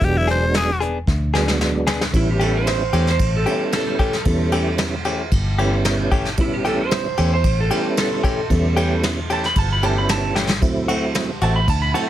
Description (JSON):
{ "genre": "straight-eighth soul blues", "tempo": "113 BPM", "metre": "4/4", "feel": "straight", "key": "A mixolydian", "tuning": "A4 = 440 Hz", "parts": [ { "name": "raspy tenor saxophone", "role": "melody", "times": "0.0-0.8 s", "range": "E4 to C5", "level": "-20 LUFS", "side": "left 2 dB", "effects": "none" }, { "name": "tonewheel organ", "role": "accompaniment", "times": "0.0-12.1 s", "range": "F#3 to E4", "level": "-23 LUFS", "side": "right 3 dB", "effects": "slow rotary speaker, overdrive, chorus vibrato" }, { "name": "vintage muted fingered electric bass", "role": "bass", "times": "0.0-11.9 s", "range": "E1 to E2", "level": "-21 LUFS", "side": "equal", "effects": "none" }, { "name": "vintage brush drum kit", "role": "drums", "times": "0.0-12.1 s", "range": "hi-hat, kick drum, ride cymbal, snare drum", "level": "-22 LUFS", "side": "equal", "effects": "none" }, { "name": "direct-recorded clean electric guitar", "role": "stabs", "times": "0.3-12.1 s", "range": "E3 to G#4", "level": "-23 LUFS", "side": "left 3 dB", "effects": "none" }, { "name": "electric slide guitar", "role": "second line", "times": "2.2-12.1 s", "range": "E4 to B5", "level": "-23 LUFS", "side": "right 2 dB", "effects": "none" } ], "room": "light reverb", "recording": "none", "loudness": "-17 LUFS", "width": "side -12 dB against mid", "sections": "0.0-2.1 A section; 2.1-12.1 A section", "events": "tenor saxophone solo 0.0-2.1; drum fill 1.1-2.1, 10.4; electric slide guitar solo 2.1-12.1", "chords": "0.0 E7; 2.1 A7; 10.6 D7", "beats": "| 0.02 0.55 1.08 1.61 | 2.14 2.67 3.20 3.73 | 4.26 4.79 5.32 5.85 | 6.38 6.91 7.45 7.97 | 8.50 9.03 9.56 10.09 | 10.62 11.15 11.68" }